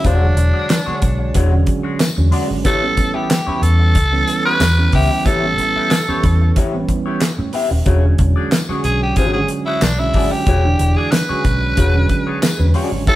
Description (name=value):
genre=funk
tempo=92 BPM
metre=4/4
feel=straight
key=E mixolydian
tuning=A4 = 439 Hz
part: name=breathy tenor saxophone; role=melody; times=0.0-13.2 s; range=D4 to B4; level=-19 LUFS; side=equal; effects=none
part: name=clean electric guitar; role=accompaniment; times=0.0-13.2 s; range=G#3 to E5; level=-24 LUFS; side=left 4 dB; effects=wah, spring reverb
part: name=mellow tonewheel organ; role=stabs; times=0.0-13.1 s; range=D3 to C#5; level=-23 LUFS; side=right 4 dB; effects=slow rotary speaker
part: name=vintage muted fingered electric bass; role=bass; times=0.0-13.2 s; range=D#1 to A2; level=-16 LUFS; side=equal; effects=none
part: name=damped 70s drum kit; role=drums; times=0.0-13.2 s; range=handclaps, hi-hat, kick drum, snare drum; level=-18 LUFS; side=equal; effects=none
part: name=tambourine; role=percussion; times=0.7-12.6 s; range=none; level=-31 LUFS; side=left 3 dB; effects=none
room=wet stone room reverb, RT60 1.2 s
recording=band playing live in one room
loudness=-13 LUFS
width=side -15 dB against mid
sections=0.0-13.2 A section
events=tonewheel organ fill 12.1-13.1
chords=0.0 E13; 2.7 A9; 7.9 E13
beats=| 0.05 0.70 1.35 2.01 | 2.66 3.31 3.96 4.61 | 5.26 5.91 6.57 7.22 | 7.87 8.52 9.17 9.82 | 10.47 11.12 11.77 12.42 | 13.07